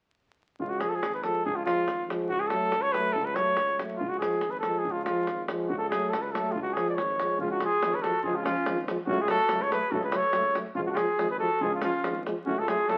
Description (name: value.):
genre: balkan folk, Balkan brass band.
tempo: 142 BPM.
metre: 2/4.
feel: straight.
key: unclear.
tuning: A4 = 441 Hz.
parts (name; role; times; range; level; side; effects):
warm trumpet; melody; 0.6-13.0 s; E#4 to D5; -30 LUFS; equal; none.
clear tuba; bass; 0.6-13.0 s; G#1 to C#2; -42 LUFS; equal; none.
davul; percussion; 0.6-13.0 s; none; -38 LUFS; equal; none.
clear euphonium; accompaniment; 0.8-13.0 s; G#3 to A3; -40 LUFS; equal; none.
mellow euphonium; accompaniment; 0.8-13.0 s; E#3 to F#3; -37 LUFS; equal; none.
warm clarinet; second line; 7.4-13.0 s; C#4 to A4; -38 LUFS; equal; none.
room: moderate large studio reverb, RT60 1.1 s.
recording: very old 78 rpm record, vinyl crackle.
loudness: -28 LUFS.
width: mono.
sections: 0.6-7.4 A section; 7.4-13.0 A section.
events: none.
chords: 0.6 C#; 2.3 F#m/C#; 4.0 C#; 5.7 F#m/C#; 6.5 C#; 9.1 F#m/C#; 10.8 C#; 12.5 F#m/C#.